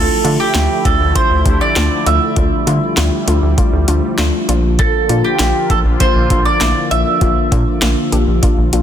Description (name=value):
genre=synth-pop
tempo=99 BPM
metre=4/4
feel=straight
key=D minor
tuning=A4 = 441 Hz
part: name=mandolin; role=melody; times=0.0-8.8 s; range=G4 to E5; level=-18 LUFS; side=right 3 dB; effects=ping-pong delay
part: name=soft round pluck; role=accompaniment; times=0.0-8.8 s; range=A3 to G4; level=-20 LUFS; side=left 3 dB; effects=chorus
part: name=sweeping resonant pad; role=sustained chords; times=0.0-8.8 s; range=D3 to F4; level=-22 LUFS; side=equal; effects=chorus
part: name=rubbery square bass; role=bass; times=0.0-8.8 s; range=Bb1 to D3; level=-16 LUFS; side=equal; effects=none
part: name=electro analog drum machine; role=drums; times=0.2-8.8 s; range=handclaps, hi-hat, kick drum, snare drum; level=-17 LUFS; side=equal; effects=none
room=light reverb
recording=dense, heavily limited modern master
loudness=-12 LUFS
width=side -9 dB against mid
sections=0.0-8.8 A section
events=none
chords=0.0 Dmadd9; 4.5 Bb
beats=0.55 1.15 1.76 | 2.37 2.97 3.58 4.18 | 4.79 5.40 6.00 6.61 | 7.21 7.82 8.43